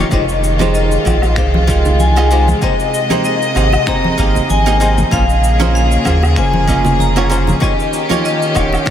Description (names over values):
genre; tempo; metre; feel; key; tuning
sunset chillout; 96 BPM; 4/4; swing 55% on 16ths; F minor; A4 = 440 Hz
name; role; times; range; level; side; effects
archtop guitar, miked and amplified; accompaniment; 0.0-8.9 s; Ab3 to F5; -19 LUFS; moving between left 3 dB and right 6 dB; auto-pan, diffuse ambient delay
clear studio string section; sustained chords; 0.0-8.9 s; C3 to Eb5; -19 LUFS; equal; none
warm sub bass; bass; 0.0-8.8 s; Eb1 to Eb2; -14 LUFS; equal; none
vibraphone with hard mallets; melody; 0.1-8.9 s; Db5 to Bb5; -18 LUFS; left 3 dB; diffuse ambient delay
cabasa, woodblock and finger snaps; drums; 0.1-8.9 s; none; -27 LUFS; right 1 dB; none
electronic kick drum; drums; 0.1-8.9 s; none; -20 LUFS; equal; none
congas and bongos; percussion; 0.6-8.8 s; none; -22 LUFS; left 2 dB; none
room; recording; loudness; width
moderate huge ambient reverb, RT60 8.8 s; dreamy mix soaked in reverb; -11 LUFS; side -10 dB against mid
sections
0.0-8.9 A section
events
none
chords
0.1 Fm7; 2.6 Abmaj7; 5.1 Bbm7; 7.6 Eb7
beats
| 0.12 0.74 1.37 2.00 | 2.62 3.25 3.87 4.50 | 5.12 5.75 6.37 7.00 | 7.62 8.24 8.87